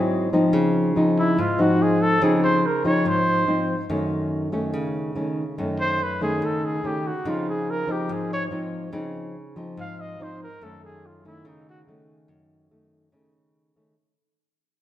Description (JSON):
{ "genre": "bossa nova", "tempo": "143 BPM", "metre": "4/4", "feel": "straight", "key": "Db major", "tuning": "A4 = 440 Hz", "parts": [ { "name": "mellow trumpet", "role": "melody", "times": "0.0-11.8 s", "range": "Eb4 to F5", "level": "-25 LUFS", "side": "right 1 dB", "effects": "none" }, { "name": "nylon-string guitar", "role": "accompaniment", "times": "0.0-13.9 s", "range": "Gb2 to Fb4", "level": "-22 LUFS", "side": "left 1 dB", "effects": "none" } ], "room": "wet echo chamber reverb, RT60 2.1 s", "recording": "heard from further back in the room", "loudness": "-20 LUFS", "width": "side -12 dB against mid", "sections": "0.5-14.0 A section", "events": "fade-out 0.5-14.0; trumpet solo 0.5-14.0", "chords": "0.0 Ab7b13; 0.5 Dbmaj9; 3.9 Gbm6; 7.2 Dbmaj9; 10.6 Gbm6" }